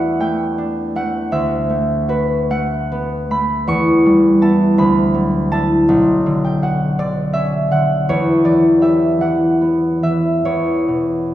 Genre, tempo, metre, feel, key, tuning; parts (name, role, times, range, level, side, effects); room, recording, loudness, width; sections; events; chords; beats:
classical, solo harp piece; 44-56 BPM (dotted quarters); 6/8; rubato; D major; A4 = 442 Hz
concert harp; solo; 0.0-11.3 s; B1 to C#6; -14 LUFS; equal
wet recital hall reverb, RT60 1.7 s; heard from further back in the room; -14 LUFS; side -13 dB against mid
0.0-11.3 A section
0.0 Em11; 1.3 D69; 3.7 Em6; 4.8 D69; 5.9 Bm9; 8.1 Em6
0.20 | 1.31 2.50 | 3.68 4.77 | 5.86 6.97 | 8.07 9.21 | 10.45